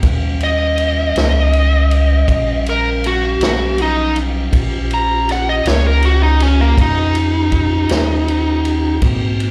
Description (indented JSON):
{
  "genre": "slow blues",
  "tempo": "53 BPM (dotted quarters)",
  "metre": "12/8",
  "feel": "straight",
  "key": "Eb mixolydian",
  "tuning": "A4 = 440 Hz",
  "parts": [
    { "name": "tonewheel organ", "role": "sustained chords", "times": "0.0-9.5 s", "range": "G3 to F5", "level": "-27 LUFS", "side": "equal", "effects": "slow rotary speaker, chorus vibrato" },
    { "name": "pure sine sub bass", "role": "bass", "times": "0.0-9.5 s", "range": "Bb1 to Ab2", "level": "-19 LUFS", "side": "equal", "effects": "none" },
    { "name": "swinging big-band drum kit", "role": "drums", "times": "0.0-9.5 s", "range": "kick drum, ride cymbal, snare drum", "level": "-23 LUFS", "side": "equal", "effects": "none" },
    { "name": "smooth overdriven lead guitar", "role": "melody", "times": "0.4-9.0 s", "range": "Bb3 to Bb5", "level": "-20 LUFS", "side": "equal", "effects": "slapback echo" }
  ],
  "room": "light reverb",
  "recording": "live gig heard through the venue's PA, club reverb",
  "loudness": "-15 LUFS",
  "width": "mono",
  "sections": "0.0-9.5 A section",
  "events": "lead electric guitar solo 0.0-9.5",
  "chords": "0.0 Eb9"
}